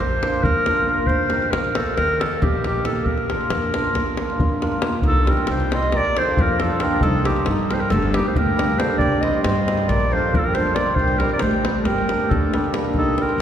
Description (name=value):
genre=balkan folk, Balkan wedding band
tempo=273 BPM (eighths)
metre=9/8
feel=straight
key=Bb major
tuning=A4 = 440 Hz
part: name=warm clarinet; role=melody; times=0.0-13.4 s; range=G4 to Eb5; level=-22 LUFS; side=equal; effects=none
part: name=upright bass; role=bass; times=0.0-13.4 s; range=G1 to G2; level=-24 LUFS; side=equal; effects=none
part: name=davul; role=percussion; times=0.0-13.3 s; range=none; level=-24 LUFS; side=left 1 dB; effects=none
part: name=cimbalom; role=accompaniment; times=0.2-13.4 s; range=F3 to Bb4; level=-25 LUFS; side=right 2 dB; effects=none
part: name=mellow accordion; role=second line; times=5.0-13.4 s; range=D4 to C5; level=-28 LUFS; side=left 1 dB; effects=none
room=wet cathedral reverb, RT60 5.4 s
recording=recorded in a church or concert hall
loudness=-17 LUFS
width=side -9 dB against mid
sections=0.0-5.0 A section; 5.0-13.4 B section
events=none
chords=0.0 Bb; 1.1 Eb; 3.1 Bb; 5.0 Cm; 5.9 Bb; 7.0 Cm; 7.9 Gm; 9.0 Cm; 9.9 Bb; 11.0 Cm; 11.8 Gm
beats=0.20 0.42 0.64 0.86 | 1.08 1.30 1.52 1.74 1.96 2.18 2.40 2.62 2.84 | 3.06 3.28 3.50 3.72 3.94 4.16 4.38 4.59 4.82 | 5.04 5.25 5.47 5.70 5.92 6.13 6.36 6.58 6.79 | 7.01 7.24 7.46 7.67 7.89 8.11 8.33 8.55 8.77 | 8.99 9.21 9.43 9.65 9.87 10.09 10.31 10.53 10.75 | 10.97 11.19 11.41 11.63 11.85 12.06 12.28 12.50 12.72 | 12.94 13.16 13.38